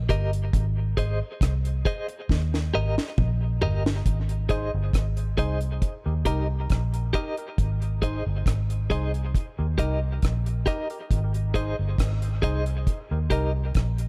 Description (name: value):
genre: dub reggae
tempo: 68 BPM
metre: 4/4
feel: straight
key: Ab major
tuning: A4 = 440 Hz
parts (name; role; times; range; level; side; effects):
- vintage muted fingered electric bass; bass; 0.0-14.1 s; G1 to Eb2; -28 LUFS; equal; none
- clean electric guitar; accompaniment; 0.1-13.5 s; G4 to Eb5; -34 LUFS; equal; tremolo, dub echo
- deep reggae drum kit; drums; 0.1-14.1 s; hi-hat, kick drum, rim click, snare drum, toms; -28 LUFS; equal; none
- percussive organ stab; stabs; 4.5-13.5 s; Eb4 to C5; -39 LUFS; equal; chorus, dub echo
room: small room ambience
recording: echo-heavy mix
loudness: -26 LUFS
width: mono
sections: 0.0-4.1 A section; 4.1-14.1 B section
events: break 0.0-4.1; drum fill 2.3-4.1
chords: 0.0 Eb; 0.5 Ab; 2.3 Eb; 4.1 Ab; 5.8 Eb; 7.6 Ab; 9.3 Eb; 11.1 Ab; 12.9 Eb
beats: | 0.54 1.42 2.30 3.18 | 4.06 4.94 5.82 6.70 | 7.58 8.46 9.34 10.22 | 11.11 11.98 12.87 13.75